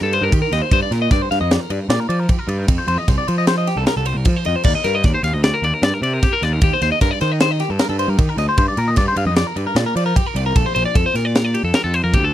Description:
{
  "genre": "math rock and midwest emo",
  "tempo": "152 BPM",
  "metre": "5/4",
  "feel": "straight",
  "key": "unclear",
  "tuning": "A4 = 439 Hz",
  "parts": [
    { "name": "semi-hollow electric guitar", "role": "arpeggios", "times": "0.0-12.3 s", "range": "G4 to F5", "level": "-20 LUFS", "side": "left 2 dB", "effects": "phaser" },
    { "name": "fuzz picked electric bass", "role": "bass", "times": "0.0-12.3 s", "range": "Bb1 to F3", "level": "-20 LUFS", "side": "equal", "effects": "overdrive" },
    { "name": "crisp fusion drum kit", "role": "drums", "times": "0.1-12.2 s", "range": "crash cymbal, kick drum, ride cymbal, snare drum", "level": "-19 LUFS", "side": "equal", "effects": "none" }
  ],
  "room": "little or no reverb",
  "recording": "dry, close 1970s-style studio recording",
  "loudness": "-15 LUFS",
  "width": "side -12 dB against mid",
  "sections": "0.0-12.3 A section",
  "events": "none",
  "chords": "0.0 Cm7; 0.7 Gm7; 2.7 F7; 4.7 Ebmaj7; 6.6 Cm7/Eb; 8.6 Gm7; 10.6 Bbmaj7",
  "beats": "0.33 | 0.72 1.11 1.51 1.90 2.29 | 2.69 3.08 3.48 3.87 4.26 | 4.66 5.05 5.44 5.84 6.23 | 6.62 7.02 7.41 7.80 8.20 | 8.59 8.98 9.38 9.77 10.16 | 10.56 10.95 11.35 11.74 12.13"
}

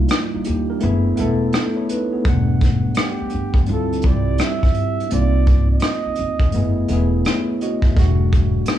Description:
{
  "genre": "lo-fi hip hop",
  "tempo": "84 BPM",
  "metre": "4/4",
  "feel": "swing 64% on 16ths",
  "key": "unclear",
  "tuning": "A4 = 440 Hz",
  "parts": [
    { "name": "tine electric piano", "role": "accompaniment", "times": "0.0-8.8 s", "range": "G3 to F#5", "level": "-22 LUFS", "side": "equal", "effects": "slow stereo tremolo, plate reverb" },
    { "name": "upright bass", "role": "bass", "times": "0.0-8.6 s", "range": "E1 to Eb2", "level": "-19 LUFS", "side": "equal", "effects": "none" },
    { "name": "vintage brush drum kit", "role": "drums", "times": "0.1-8.8 s", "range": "hi-hat, kick drum, rim click", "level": "-19 LUFS", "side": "equal", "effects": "none" },
    { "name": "breathy flugelhorn", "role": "melody", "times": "3.0-7.1 s", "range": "G4 to E5", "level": "-26 LUFS", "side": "right 5 dB", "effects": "analog delay, plate reverb" }
  ],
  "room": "light reverb",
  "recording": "cassette tape, small room ambience",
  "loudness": "-16 LUFS",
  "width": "side -11 dB against mid",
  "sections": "0.0-8.8 A section",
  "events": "break 0.0-2.3",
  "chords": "0.0 Cm11 (rootless); 0.8 F#m11; 2.3 Em11; 3.7 Dm11; 5.1 Cm7; 6.5 F#m11; 8.0 Em11",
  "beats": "0.11 0.82 1.54 | 2.25 2.97 3.68 4.40 | 5.11 5.83 6.54 7.25 | 7.97 8.68"
}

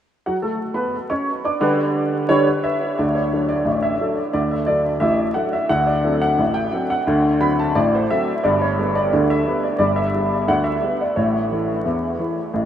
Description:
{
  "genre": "ragtime piano",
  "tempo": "88 BPM",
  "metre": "2/4",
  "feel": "straight",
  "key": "D major",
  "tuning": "A4 = 443 Hz",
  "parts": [
    { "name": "warm upright piano", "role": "solo", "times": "0.3-12.7 s", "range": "G1 to D6", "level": "-17 LUFS", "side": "equal", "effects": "lush chorus, diffuse ambient delay" }
  ],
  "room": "wet huge ambient reverb, RT60 6.8 s",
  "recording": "dreamy mix soaked in reverb, vinyl crackle",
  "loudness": "-17 LUFS",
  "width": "side -10 dB against mid",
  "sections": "0.3-3.0 A section; 3.0-12.7 B section",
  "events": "none",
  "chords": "0.3 D; 1.6 G/D; 3.0 D; 5.7 D7; 8.4 G; 11.2 A",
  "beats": "| 0.26 0.94 | 1.62 2.30 | 2.99 3.67 | 4.35 5.03 | 5.71 6.39 | 7.08 7.75 | 8.43 9.11 | 9.79 10.47 | 11.15 11.83 | 12.52"
}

